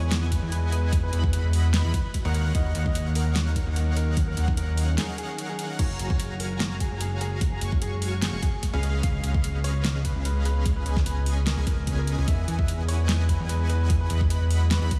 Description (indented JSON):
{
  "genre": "future bass",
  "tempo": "148 BPM",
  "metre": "4/4",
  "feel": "swing 53% on 16ths, half-time",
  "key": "F# major",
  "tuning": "A4 = 440 Hz",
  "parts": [
    { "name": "warm concert grand piano", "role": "melody", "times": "0.0-15.0 s", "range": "G#4 to E#5", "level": "-40 LUFS", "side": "equal", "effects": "sidechain pumping, diffuse ambient delay" },
    { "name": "ethereal airy pad", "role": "sustained chords", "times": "0.0-15.0 s", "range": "C#3 to D#5", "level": "-43 LUFS", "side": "equal", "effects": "none" },
    { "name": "airy dreamy lead", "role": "arpeggios", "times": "0.0-14.9 s", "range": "E#5 to C#6", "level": "-43 LUFS", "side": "equal", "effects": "chorus, sidechain pumping, diffuse ambient delay" },
    { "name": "dense compressed supersaw", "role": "riff", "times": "0.0-14.9 s", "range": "C#4 to C#6", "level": "-39 LUFS", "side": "equal", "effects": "subtle chorus, sidechain pumping, diffuse ambient delay" },
    { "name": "fat analog bass", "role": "bass", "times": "0.0-14.9 s", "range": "F#1 to E2", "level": "-27 LUFS", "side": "equal", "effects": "tube saturation, sidechain pumping" },
    { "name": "pop drum kit", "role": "drums", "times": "0.1-15.0 s", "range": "crash cymbal, hi-hat, snare drum", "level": "-34 LUFS", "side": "equal", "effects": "small room ambience" },
    { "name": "electronic kick drum", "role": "drums", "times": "0.3-15.0 s", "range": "none", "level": "-28 LUFS", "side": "equal", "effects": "small room ambience" }
  ],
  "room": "light reverb, digital ambience",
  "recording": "studio reverb",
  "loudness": "-25 LUFS",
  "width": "mono",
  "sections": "0.0-15.0 A section",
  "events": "break 5.0-5.8",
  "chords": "0.0 Emaj9; 2.3 D#m9; 5.8 F#maj9; 8.8 C#7; 12.3 Emaj9"
}